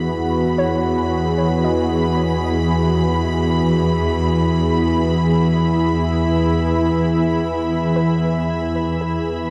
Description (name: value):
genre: ambient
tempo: 57 BPM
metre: 3/4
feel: straight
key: E major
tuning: A4 = 440 Hz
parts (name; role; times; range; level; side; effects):
- warm analog pad; sustained chords; 0.0-9.5 s; E3 to G#4; -20 LUFS; equal; chorus, tremolo
- soft round pluck; arpeggios; 0.0-9.5 s; G#4 to D#5; -32 LUFS; equal; analog chorus, delay
- dark symphonic cello section; bass; 0.0-9.5 s; E2; -26 LUFS; equal; none
- organ-like drone; drone; 0.0-9.5 s; E3 to E4; -27 LUFS; equal; ensemble chorus, built-in reverb
- clear studio violin section; texture; 0.0-9.5 s; B5; -30 LUFS; equal; none
room: wet cathedral reverb, RT60 6.3 s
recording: none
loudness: -18 LUFS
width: mono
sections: 0.0-9.5 A section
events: none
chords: 0.0 Eadd9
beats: | 0.59 1.65 2.70 | 3.75 4.81 5.86 | 6.91 7.96 9.02